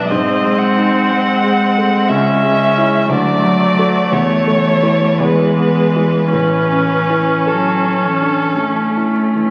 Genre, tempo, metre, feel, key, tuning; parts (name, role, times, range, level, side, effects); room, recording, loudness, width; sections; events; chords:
classical, slow romantic movement for piano quartet; 51-60 BPM; 3/4; rubato; A major; A4 = 438 Hz
clear violin; melody; 0.0-9.2 s; A4 to F#5; -20 LUFS; equal
rich cello; second line; 0.0-9.5 s; E3 to A3; -20 LUFS; equal
clear viola; accompaniment; 0.0-9.5 s; G#3 to D4; -19 LUFS; equal
warm concert grand piano; accompaniment; 0.0-9.5 s; B1 to C#5; -21 LUFS; equal
wet concert hall reverb, RT60 1.9 s; very old 78 rpm record, vinyl crackle; -14 LUFS; mono
0.0-9.5 A section
0.1 G#7; 2.1 C#m; 3.1 D; 4.1 A/E; 5.2 E; 6.3 A